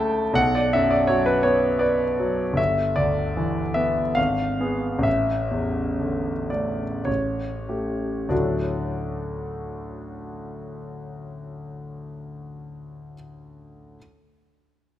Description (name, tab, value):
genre	classical, romantic nocturne for solo piano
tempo	46-85 BPM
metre	3/4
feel	rubato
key	D major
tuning	A4 = 440 Hz
part	clear concert grand piano	solo	0.0-14.0 s	G1 to C#6	-22 LUFS	equal	none
room	moderate concert hall reverb, RT60 2.1 s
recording	close, detailed microphones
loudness	-21 LUFS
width	side -12 dB against mid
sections	0.0-8.3 A section; 8.3-11.8 B section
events	slowing down 1.4-8.3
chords	0.4 Bm; 2.6 Em7/G; 4.2 G#m6; 5.1 Asus4; 7.1 A7; 8.3 D